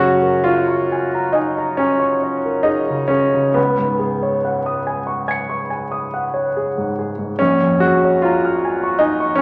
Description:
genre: classical, impressionist solo piano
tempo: 42-52 BPM (dotted quarters)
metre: 9/8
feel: rubato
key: F# major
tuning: A4 = 439 Hz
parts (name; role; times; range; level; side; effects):
- clear grand piano; solo; 0.0-9.4 s; A#1 to C#7; -18 LUFS; equal; none
room: wet recital hall reverb, RT60 1.4 s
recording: none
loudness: -18 LUFS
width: mono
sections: 0.0-9.4 A section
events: none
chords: 0.0 F#add9; 3.6 C#11; 7.4 A#m7

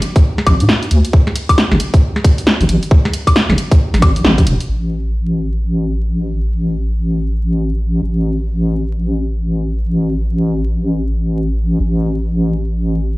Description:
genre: UK garage, two-step garage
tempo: 135 BPM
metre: 4/4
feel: swing 62% on 16ths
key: unclear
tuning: A4 = 441 Hz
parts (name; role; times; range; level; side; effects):
- punchy analog drum machine; drums; 0.0-4.7 s; hi-hat, snare drum, woodblock; -15 LUFS; equal; low-pass filter on hats, low-pass filter on snare, low-pass filter on perc
- electronic kick drum; drums; 0.2-4.5 s; none; -10 LUFS; equal; none
- deep soft wobble bass; bass; 0.5-13.2 s; E1 to A2; -15 LUFS; equal; chorus
room: light reverb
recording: played on a big sound system in a bare room, stone room reverb, vinyl crackle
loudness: -13 LUFS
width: side -20 dB against mid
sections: 0.0-4.7 A section; 4.7-13.2 B section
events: band accent 4.2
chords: none

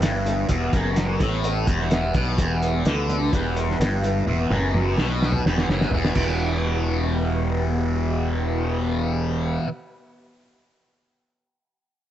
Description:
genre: psychedelic rock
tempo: 127 BPM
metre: 4/4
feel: straight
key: E minor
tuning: A4 = 435 Hz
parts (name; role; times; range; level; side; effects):
- combo organ; sustained chords; 0.0-9.6 s; E3 to B4; -32 LUFS; right 3 dB; lush chorus
- fuzz guitar; riff; 0.0-9.7 s; E2 to E3; -24 LUFS; left 1 dB; distortion, phaser
- fuzz fingered electric bass; bass; 0.0-9.6 s; E1 to D2; -25 LUFS; equal; overdrive
- cloth-damped thuddy drum kit; drums; 0.0-6.3 s; crash cymbal, hi-hat, kick drum, snare drum, toms; -25 LUFS; equal; analog delay
- congas; percussion; 0.3-6.4 s; none; -37 LUFS; right 2 dB; none
room: light reverb, studio reverb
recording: echo-heavy mix, nothing above 8.0 kHz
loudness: -20 LUFS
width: side -11 dB against mid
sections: 0.0-6.2 A section; 6.2-9.9 B section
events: drum fill 4.3-6.2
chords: 0.0 Em

